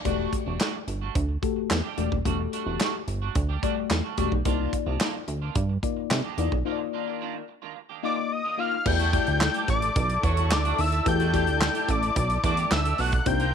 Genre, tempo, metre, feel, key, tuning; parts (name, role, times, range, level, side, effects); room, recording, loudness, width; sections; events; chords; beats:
early-eighties boogie funk; 109 BPM; 4/4; straight; A4 = 440 Hz
mellow FM electric piano; accompaniment; 0.0-13.5 s; A3 to F5; -30 LUFS; left 15 dB; chorus, phaser
clean electric guitar; riff; 0.1-13.5 s; Eb3 to G4; -35 LUFS; right 14 dB; lush chorus
chorused synth bass; bass; 0.1-13.5 s; D#1 to C3; -27 LUFS; right 2 dB
modern studio drum kit; drums; 0.1-13.5 s; crash cymbal, handclaps, hi-hat, kick drum, snare drum; -28 LUFS; right 1 dB
fat analog lead; melody; 8.0-13.5 s; C#6 to G6; -27 LUFS; left 2 dB; chorus
muted studio string section; sustained chords; 8.9-13.5 s; Eb3 to Bb5; -33 LUFS; left 2 dB
little or no reverb; 1960s-style stereo with parts hard left and right; -23 LUFS; side -7 dB against mid
0.1-8.9 A section; 8.9-13.5 B section
break 6.7-8.9
0.1 Em11; 4.5 Cm11; 8.9 Em11
| 0.05 0.60 1.15 1.70 | 2.25 2.80 3.35 3.90 | 4.46 5.00 5.56 6.11 | 6.66 7.21 7.76 8.31 | 8.86 9.41 9.96 10.51 | 11.06 11.61 12.16 12.71 | 13.26